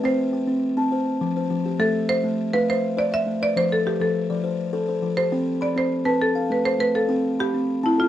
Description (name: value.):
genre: southern african traditional.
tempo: 136 BPM (dotted quarters).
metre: 12/8.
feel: straight.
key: C major.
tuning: A4 = 439 Hz.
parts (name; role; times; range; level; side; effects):
buzzing marimba with hard mallets; melody; 0.0-8.1 s; E4 to E5; -22 LUFS; right 1 dB; none.
buzzing kalimba; arpeggios; 0.0-8.1 s; F3 to B5; -23 LUFS; left 1 dB; none.
room: light reverb.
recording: dry, close 1970s-style studio recording.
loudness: -20 LUFS.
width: side -12 dB against mid.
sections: 0.0-5.3 A section; 5.3-8.1 A section.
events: none.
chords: 0.0 C5; 0.9 F; 1.8 Am; 3.6 F; 5.3 C5; 6.2 Asus2; 7.1 C5.